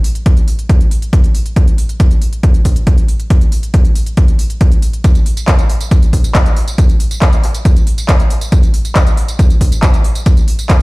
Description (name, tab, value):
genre	techno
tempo	138 BPM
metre	4/4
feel	straight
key	none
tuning	none
part	techno drum kit	drums	0.0-10.8 s	handclaps, hi-hat, tambourine	-21 LUFS	equal	overdrive, sidechain pumping on hats, studio reverb, sidechain pumping on perc
part	electronic kick drum	drums	0.3-10.8 s	none	-9 LUFS	equal	studio reverb
room	digital ambience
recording	played on a big sound system in a bare room, large studio reverb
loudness	-9 LUFS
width	side -23 dB against mid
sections	0.0-10.8 A section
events	none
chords	none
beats	0.26 0.69 1.13 | 1.56 2.00 2.44 2.87 | 3.30 3.74 4.17 4.61 | 5.04 5.48 5.91 6.35 | 6.78 7.22 7.65 8.09 | 8.52 8.96 9.39 9.83 | 10.26 10.70